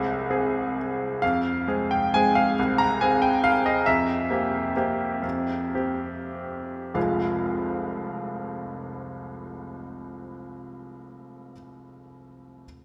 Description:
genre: classical, piano waltz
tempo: 91-146 BPM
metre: 3/4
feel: rubato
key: F minor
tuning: A4 = 440 Hz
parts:
  - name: bright grand piano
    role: solo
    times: 0.0-12.7 s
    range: F1 to Bb5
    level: -26 LUFS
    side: equal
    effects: none
room: wet cathedral reverb, RT60 7.5 s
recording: recorded in a church or concert hall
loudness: -25 LUFS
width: mono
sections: 0.0-1.2 A section; 1.2-7.0 B section; 7.0-10.5 C section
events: slowing down 3.2-7.0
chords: 0.0 Fm; 3.9 C7/F; 7.0 Fm

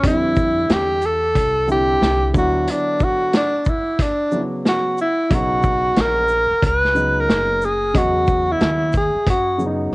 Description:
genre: hip hop, jazz-hop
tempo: 91 BPM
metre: 4/4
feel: swing 64% on 16ths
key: unclear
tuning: A4 = 439 Hz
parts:
  - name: breathy tenor saxophone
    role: melody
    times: 0.0-9.7 s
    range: D4 to B4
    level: -18 LUFS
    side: equal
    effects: cassette tape
  - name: dark concert grand piano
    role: accompaniment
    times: 0.0-9.9 s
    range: C#3 to D#5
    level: -24 LUFS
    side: equal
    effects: none
  - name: upright bass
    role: bass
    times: 0.0-9.9 s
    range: F#1 to F#2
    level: -25 LUFS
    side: equal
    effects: none
  - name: vintage drum kit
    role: drums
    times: 0.0-9.8 s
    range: hi-hat, kick drum, shaker, snare drum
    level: -20 LUFS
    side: equal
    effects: none
room: light reverb, studio ambience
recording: home recording on cassette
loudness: -16 LUFS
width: side -24 dB against mid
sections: 0.0-9.9 A section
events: break 2.7-5.3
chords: 0.0 Fmaj9; 2.3 Dmaj9; 5.3 Bmaj9; 7.9 Esus2

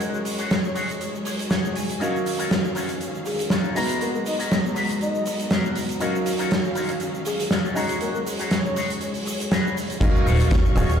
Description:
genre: nu-disco, nu disco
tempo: 120 BPM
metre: 4/4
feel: swing 54% on 16ths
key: unclear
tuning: A4 = 440 Hz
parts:
  - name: clear baby grand piano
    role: accompaniment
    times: 0.0-11.0 s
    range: Gb3 to Bb5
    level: -29 LUFS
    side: equal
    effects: sidechain pumping, digital delay
  - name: warm studio string section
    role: sustained chords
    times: 0.0-11.0 s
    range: Eb3 to Db6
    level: -30 LUFS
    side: equal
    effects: vintage 12-bit sampler grit, sidechain pumping, low-pass filter
  - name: electric guitar with an envelope filter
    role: riff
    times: 0.0-10.9 s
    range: Cb4 to Ab5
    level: -31 LUFS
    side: left 3 dB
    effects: wide subtle chorus, low-pass filter, digital delay
  - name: oversized low-tuned drum kit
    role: drums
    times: 0.0-11.0 s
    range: crash cymbal, hi-hat, rim click, shaker, snare drum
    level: -25 LUFS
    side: equal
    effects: none
  - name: soft octave-layered synth lead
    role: melody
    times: 3.3-9.0 s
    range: Ab4 to Eb5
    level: -30 LUFS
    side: left 2 dB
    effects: chorus, tremolo, digital delay
  - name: chorused synth bass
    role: bass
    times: 10.0-11.0 s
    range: Eb1 to Eb2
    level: -19 LUFS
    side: equal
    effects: sidechain pumping
  - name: kick drum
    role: drums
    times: 10.0-10.6 s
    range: none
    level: -20 LUFS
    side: equal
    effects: none
room: moderate plate reverb, RT60 1.4 s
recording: played on a big sound system in a bare room, large studio reverb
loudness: -21 LUFS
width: side -8 dB against mid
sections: 0.0-10.0 A section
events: clean electric guitar fill 1.0-2.0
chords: 0.0 Ab7sus4; 2.0 Ebm9; 3.8 Abm9; 6.0 Ebm9; 7.8 Ab7sus4; 10.0 Ebm9

